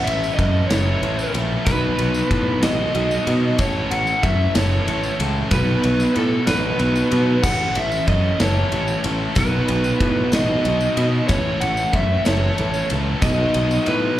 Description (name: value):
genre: indie rock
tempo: 62 BPM (dotted quarters)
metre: 6/8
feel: straight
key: A lydian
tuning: A4 = 440 Hz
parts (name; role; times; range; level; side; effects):
- lead guitar through a small cranked amp; melody; 0.0-14.2 s; A4 to F#5; -23 LUFS; equal; overdrive, plate reverb, digital delay
- overdriven tonewheel organ; sustained chords; 0.0-14.2 s; D#3 to C#4; -33 LUFS; equal; none
- biting overdriven guitar; riff; 0.0-14.2 s; A2 to A4; -22 LUFS; equal; slapback echo
- picked electric bass; bass; 0.1-14.1 s; F#1 to B2; -22 LUFS; equal; none
- big rock drum kit; drums; 0.1-14.0 s; crash cymbal, kick drum, ride cymbal, snare drum; -25 LUFS; equal; none
- tambourine; percussion; 0.2-13.9 s; none; -37 LUFS; left 2 dB; none
room: light reverb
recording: live gig heard through the venue's PA, club ambience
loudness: -17 LUFS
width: side -13 dB against mid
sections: 0.0-14.2 A section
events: none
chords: 0.0 A; 1.7 B; 3.6 A; 5.5 B; 7.4 A; 9.4 B; 11.3 A; 13.2 B